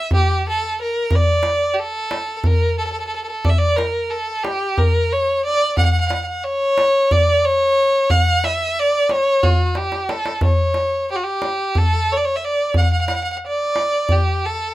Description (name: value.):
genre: Turkish makam ensemble.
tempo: 180 BPM (eighths).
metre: 7/8.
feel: straight.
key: A makam hicaz.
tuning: A4 = 440 Hz.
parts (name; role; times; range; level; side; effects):
warm violin; melody; 0.0-14.7 s; F#4-41c to F#5-33c; -18 LUFS; equal; none.
darbuka; percussion; 0.1-14.2 s; none; -19 LUFS; equal; none.
room: light reverb.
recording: close, detailed microphones.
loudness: -16 LUFS.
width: side -16 dB against mid.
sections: 0.0-1.1 A section; 1.1-14.7 B section.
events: drum fill 9.8-10.4.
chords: none.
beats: 0.11 0.44 0.77 | 1.11 1.44 1.77 2.10 2.44 2.77 3.10 | 3.43 3.77 4.10 4.43 4.76 5.10 5.43 | 5.76 6.09 6.43 6.76 7.09 7.43 7.76 | 8.09 8.43 8.76 9.09 9.42 9.76 10.09 | 10.42 10.76 11.09 11.42 11.76 12.09 12.42 | 12.76 13.09 13.42 13.76 14.09 14.42.